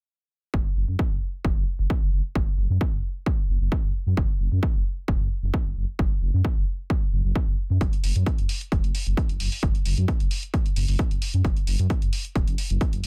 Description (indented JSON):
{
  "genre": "driving peak-time techno",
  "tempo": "132 BPM",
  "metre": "4/4",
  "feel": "straight",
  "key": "unclear",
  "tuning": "A4 = 440 Hz",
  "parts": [
    { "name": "dark detuned saw bass", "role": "bass", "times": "0.5-13.1 s", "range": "E1 to F#2", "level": "-27 LUFS", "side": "equal", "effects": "sidechain pumping" },
    { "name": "electronic kick drum", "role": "drums", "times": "0.5-12.9 s", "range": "none", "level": "-27 LUFS", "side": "equal", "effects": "none" },
    { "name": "electronic hi-hat", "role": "drums", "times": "7.8-13.1 s", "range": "none", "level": "-36 LUFS", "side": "equal", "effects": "sidechain pumping on hats, low-pass filter on hats" }
  ],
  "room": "little or no reverb",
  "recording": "none",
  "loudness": "-25 LUFS",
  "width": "mono",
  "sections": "0.5-13.1 A section",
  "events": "filter sweep on detuned saw bass 0.5-13.1",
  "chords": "none"
}